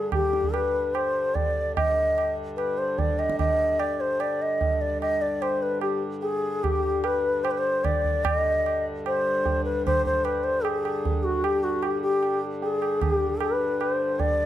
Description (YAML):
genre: indian classical, Hindustani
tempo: 149 BPM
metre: 4/4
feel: straight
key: G raga bhairav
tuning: A4 = 441 Hz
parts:
  - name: bansuri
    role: melody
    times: 0.0-14.5 s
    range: F#4 to Eb5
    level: -24 LUFS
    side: left 1 dB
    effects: none
  - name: pedal harmonium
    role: drone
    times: 0.0-14.5 s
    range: G2 to D3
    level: -33 LUFS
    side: left 1 dB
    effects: none
  - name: tabla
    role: percussion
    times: 0.1-14.3 s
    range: none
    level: -29 LUFS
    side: right 4 dB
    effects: none
room: moderate recital hall reverb, RT60 1.3 s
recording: dark, warm production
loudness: -23 LUFS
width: side -12 dB against mid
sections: 0.0-8.2 A section; 8.2-14.5 B section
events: speeding up 0.0-14.5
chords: none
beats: | 0.12 0.53 0.94 1.35 | 1.76 2.17 2.58 2.98 | 3.39 3.80 4.21 4.61 | 5.02 5.42 5.83 6.23 | 6.64 7.04 7.44 7.84 | 8.25 8.65 9.05 9.45 | 9.85 10.24 10.64 11.04 | 11.44 11.83 12.23 12.62 | 13.02 13.41 13.80 14.19